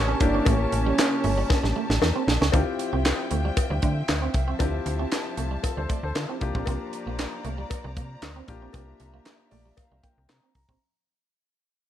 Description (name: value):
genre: early-eighties boogie funk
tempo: 116 BPM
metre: 4/4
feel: straight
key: D minor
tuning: A4 = 441 Hz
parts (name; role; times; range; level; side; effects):
- fat analog lead; melody; 0.0-2.0 s; C#4 to D4; -27 LUFS; right 2 dB; slapback echo
- clear grand piano; accompaniment; 0.0-10.8 s; Bb3 to Bb5; -33 LUFS; left 5 dB; none
- warm studio string section; sustained chords; 0.0-10.8 s; F3 to Bb5; -35 LUFS; left 1 dB; none
- slap-like FM bass; bass; 0.0-10.8 s; G1 to D3; -27 LUFS; equal; none
- clean electric guitar; riff; 0.1-10.8 s; G3 to D4; -34 LUFS; right 7 dB; analog chorus
- tight funk drum kit; drums; 0.2-10.8 s; handclaps, hi-hat, kick drum, snare drum; -26 LUFS; right 1 dB; none
- cowbell; percussion; 0.5-10.4 s; none; -33 LUFS; left 15 dB; none
room: studio ambience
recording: none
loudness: -23 LUFS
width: side -11 dB against mid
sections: 0.0-2.5 A section; 2.5-10.8 B section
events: drum fill 1.5-2.5; fade-out 2.5-10.8; grand piano fill 9.3-10.8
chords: 0.0 A7b9; 2.5 Dm11; 6.4 C9sus4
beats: | 0.47 0.98 1.50 2.02 | 2.54 3.05 3.57 4.09 | 4.60 5.12 5.64 6.16 | 6.67 7.19 7.71 8.22 | 8.74 9.26 9.78 10.29